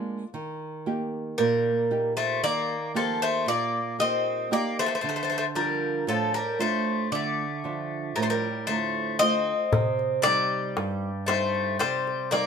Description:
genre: greek folk, Greek bouzouki band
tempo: 115 BPM (eighths)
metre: 9/8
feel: straight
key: D phrygian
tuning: A4 = 440 Hz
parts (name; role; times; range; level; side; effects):
- Greek bouzouki; melody; 0.0-12.5 s; F4 to Eb5; -26 LUFS; left 2 dB; none
- Greek bouzouki; second line; 0.0-12.5 s; D3 to C4; -29 LUFS; left 2 dB; none
- nylon-string guitar; accompaniment; 0.0-12.5 s; G2 to G4; -30 LUFS; right 4 dB; none
- darbuka; percussion; 9.7-12.5 s; none; -28 LUFS; left 2 dB; none
room: moderate studio ambience, RT60 0.5 s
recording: minimal, uncompressed stereo recording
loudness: -24 LUFS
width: side -6 dB against mid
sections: 0.0-9.7 A section; 9.7-12.5 B section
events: none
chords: 0.3 Eb; 5.0 Dm; 9.7 Cm

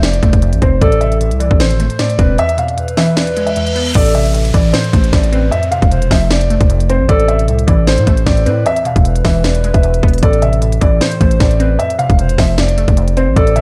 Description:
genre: hip hop, trap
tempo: 153 BPM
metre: 4/4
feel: half-time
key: A harmonic minor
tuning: A4 = 442 Hz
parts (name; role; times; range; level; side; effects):
- dark grand piano; melody; 0.0-13.6 s; C5 to F5; -20 LUFS; equal; diffuse ambient delay
- glassy wavetable pluck; accompaniment; 0.0-13.6 s; E2 to C4; -20 LUFS; equal; chorus
- hard-hitting 808-style bass; bass; 0.0-13.6 s; E1 to A2; -17 LUFS; equal; none
- trap drum kit; drums; 0.0-13.6 s; crash cymbal, hi-hat, kick drum, snare drum; -17 LUFS; equal; vintage 12-bit sampler grit
- hollow clarinet-like synth lead; second line; 0.8-13.6 s; A4 to C5; -24 LUFS; equal; chorus, diffuse ambient delay
- reverse cymbal and downlifter; sound effects; 3.3-7.1 s; none; -28 LUFS; equal; none
room: light reverb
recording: none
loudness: -13 LUFS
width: mono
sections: 0.0-4.0 A section; 4.0-13.6 B section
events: kick muted 2.4-4.0; reverse cymbal 3.3-4.0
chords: 0.0 F; 0.8 Am; 2.4 E; 4.0 Am; 5.5 F; 7.1 Am; 8.7 E; 10.2 Am; 11.8 F

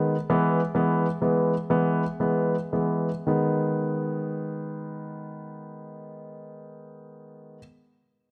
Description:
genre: pop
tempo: 36-46 BPM (dotted quarters)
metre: 6/8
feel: straight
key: G# minor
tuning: A4 = 440 Hz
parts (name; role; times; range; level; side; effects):
- warm concert grand piano; accompaniment; 0.0-7.6 s; D#3 to B3; -27 LUFS; equal; none
room: moderate echo chamber reverb, RT60 2.5 s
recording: none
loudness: -25 LUFS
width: mono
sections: 0.0-3.3 A section; 3.3-6.7 B section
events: slowing down 0.0-3.3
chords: 0.3 E; 3.3 G#m

